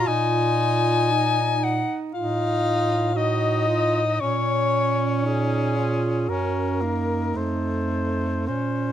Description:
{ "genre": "classical, lyrical piece for single-reed quartet", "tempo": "52-60 BPM", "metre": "4/4", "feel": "rubato", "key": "Bb minor", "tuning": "A4 = 441 Hz", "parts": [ { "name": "warm soprano saxophone", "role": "melody", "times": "0.0-8.9 s", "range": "Ab4 to Ab5", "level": "-25 LUFS", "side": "left 6 dB", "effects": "none" }, { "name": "clear alto saxophone", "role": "second line", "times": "0.0-8.9 s", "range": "Db4 to Gb4", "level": "-28 LUFS", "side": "right 4 dB", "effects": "none" }, { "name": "bright tenor saxophone", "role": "accompaniment", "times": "0.0-8.9 s", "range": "A3 to Eb4", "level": "-27 LUFS", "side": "left 1 dB", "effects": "none" }, { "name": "mellow bass clarinet", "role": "bass", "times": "0.0-8.9 s", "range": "F2 to Bb2", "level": "-26 LUFS", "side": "right 2 dB", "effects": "none" } ], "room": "light reverb", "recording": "none", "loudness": "-20 LUFS", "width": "side -10 dB against mid", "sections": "0.0-8.9 A section", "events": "none", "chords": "0.1 Bb7sus4; 2.2 F7/A; 4.2 Bbm; 6.3 Gb; 7.4 F" }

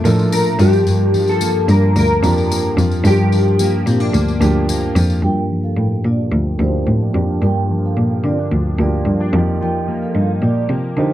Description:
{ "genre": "indie pop, bedroom pop", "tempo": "110 BPM", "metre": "4/4", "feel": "straight", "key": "G minor", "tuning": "A4 = 440 Hz", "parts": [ { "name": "fingerpicked steel-string acoustic guitar", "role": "accompaniment", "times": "0.0-11.1 s", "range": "G2 to G4", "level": "-20 LUFS", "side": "left 2 dB", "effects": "analog chorus, warbly pitch drift, low-pass filter" }, { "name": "warm upright piano", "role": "accompaniment", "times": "0.0-11.1 s", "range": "F3 to A5", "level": "-22 LUFS", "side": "right 4 dB", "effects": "cassette tape, low-pass filter" }, { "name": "clear cello", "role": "bass", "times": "0.0-11.1 s", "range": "D2 to D3", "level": "-16 LUFS", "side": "equal", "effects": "none" }, { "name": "tambourine", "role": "percussion", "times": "0.1-5.2 s", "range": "none", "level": "-30 LUFS", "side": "left 8 dB", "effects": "none" }, { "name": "mellow electric guitar", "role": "melody", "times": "0.3-4.9 s", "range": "G4 to Bb4", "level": "-19 LUFS", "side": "left 2 dB", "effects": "analog chorus, tape echo" }, { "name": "vibraphone with medium mallets", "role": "second line", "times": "5.2-11.1 s", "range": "Eb4 to G5", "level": "-26 LUFS", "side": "right 4 dB", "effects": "lush chorus, tape echo" } ], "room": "little or no reverb", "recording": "dry, close 1970s-style studio recording", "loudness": "-14 LUFS", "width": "side -13 dB against mid", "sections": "0.0-5.2 A section; 5.2-11.1 B section", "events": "filter sweep 5.2-11.1", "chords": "0.0 Bbmaj7; 0.6 Gm7; 9.3 F9sus4" }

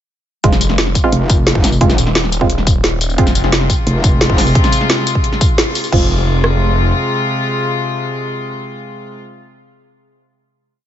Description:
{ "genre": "dark technical drum and bass", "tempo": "175 BPM", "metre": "4/4", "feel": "straight", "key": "F minor", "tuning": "A4 = 440 Hz", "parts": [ { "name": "filtered dub chord stab", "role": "stabs", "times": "0.4-3.2, 5.9-9.2 s", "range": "Ab3 to F4", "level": "-20 LUFS", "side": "right 3 dB", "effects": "chorus, ping-pong delay" }, { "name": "phased detuned saw bass", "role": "bass", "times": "0.4-3.7, 5.9-6.9 s", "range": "Eb1 to F1", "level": "-16 LUFS", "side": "equal", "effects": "phaser, overdrive, sidechain pumping" }, { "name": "drum and bass drum kit", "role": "drums", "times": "0.4-6.0 s", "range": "crash cymbal, hi-hat, snare drum, tambourine", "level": "-17 LUFS", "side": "equal", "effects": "none" }, { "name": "dubstep drum kit", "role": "drums", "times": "0.4-6.5 s", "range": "kick drum, rim click", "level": "-14 LUFS", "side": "equal", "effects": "none" }, { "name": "metallic wobble bass", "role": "bass", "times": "1.1-4.5 s", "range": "F1", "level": "-15 LUFS", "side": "equal", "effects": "chorus" }, { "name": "rich chamber string section", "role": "sustained chords", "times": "3.2-9.2 s", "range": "C3 to F4", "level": "-19 LUFS", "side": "left 2 dB", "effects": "sidechain pumping" } ], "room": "light reverb", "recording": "nothing above 7.8 kHz", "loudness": "-12 LUFS", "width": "side -10 dB against mid", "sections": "0.4-5.9 drop; 5.9-8.7 final chord", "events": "drop 0.4-5.9; band accent 5.6", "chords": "0.4 Fm" }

